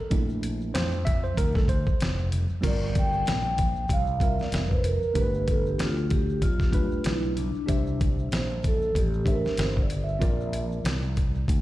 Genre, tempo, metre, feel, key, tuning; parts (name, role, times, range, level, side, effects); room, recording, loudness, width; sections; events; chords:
hip hop, jazz-hop; 95 BPM; 4/4; swing 57% on 16ths; G dorian; A4 = 440 Hz
mellow tine electric piano; accompaniment; 0.0-11.0 s; G3 to E5; -33 LUFS; right 2 dB; medium stereo tremolo
fretless electric bass; bass; 0.1-11.6 s; F1 to F2; -28 LUFS; equal
dusty soul sampler-style drum kit; drums; 0.1-11.6 s; crash cymbal, hi-hat, kick drum, snare drum; -26 LUFS; equal
maracas and congas; percussion; 0.1-11.6 s; -42 LUFS; left 3 dB
vibraphone with soft mallets; melody; 2.7-10.6 s; D4 to G5; -30 LUFS; equal; tape echo
little or no reverb; played on a big sound system in a bare room, large studio reverb; -23 LUFS; side -16 dB against mid
0.0-2.6 A section; 2.6-11.6 A section
tine electric piano solo 0.0-2.6; vibraphone solo 2.6-11.6
0.1 Bbmaj9#11; 2.6 Gm7; 5.2 G7; 7.7 C13; 10.2 Bbadd9